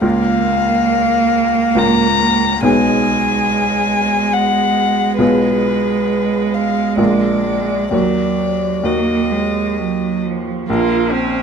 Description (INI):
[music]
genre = classical, slow romantic movement for piano quartet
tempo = 64-72 BPM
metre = 3/4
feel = rubato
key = Eb minor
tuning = A4 = 439 Hz
[part]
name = dark violin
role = melody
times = 0.0-10.2 s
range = Cb5 to Bb5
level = -18 LUFS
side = left 6 dB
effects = none
[part]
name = clear cello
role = second line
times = 0.0-11.4 s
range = F3 to F4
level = -18 LUFS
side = right 8 dB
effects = none
[part]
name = bright baby grand piano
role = accompaniment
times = 0.0-11.4 s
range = Bb1 to Bb4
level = -18 LUFS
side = equal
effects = none
[part]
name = warm violin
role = second line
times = 10.7-11.4 s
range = Bb3 to C4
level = -20 LUFS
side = equal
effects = none
[sound]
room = light reverb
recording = dark, warm production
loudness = -13 LUFS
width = side -6 dB against mid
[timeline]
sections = 0.0-10.7 A section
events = none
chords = 0.0 Bbm/Db; 2.6 Abm/Cb; 5.2 Fdim/Cb; 7.0 Bb7; 7.9 Ebm; 10.7 Bbm